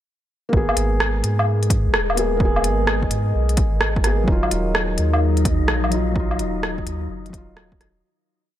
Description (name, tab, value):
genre	future garage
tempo	128 BPM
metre	4/4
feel	swing 66% on 16ths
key	Eb minor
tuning	A4 = 440 Hz
part	felt-muted upright piano	accompaniment	0.5-8.1 s	Gb3 to Ab4	-26 LUFS	equal	sidechain pumping, tape echo
part	warbly tape-like pad	sustained chords	0.8-8.0 s	Eb3 to F5	-28 LUFS	left 3 dB	chorus, built-in reverb, vintage 12-bit sampler grit, sidechain pumping
part	warm sub bass	bass	0.5-8.0 s	Eb1 to Ab2	-22 LUFS	equal	sidechain pumping
part	electronic kick drum	drums	0.5-7.8 s	none	-21 LUFS	equal	overdrive
part	organic electronic drum kit	drums	0.7-7.9 s	hi-hat, rim click, woodblock	-22 LUFS	equal	none
part	wind-like tuned noise texture	texture	4.9-8.0 s	Eb4 to Eb5	-34 LUFS	right 2 dB	built-in reverb
room	light reverb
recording	none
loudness	-17 LUFS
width	side -12 dB against mid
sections	0.5-8.0 groove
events	fade-out 5.5-8.0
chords	0.5 Abmadd9; 4.3 Ebmadd9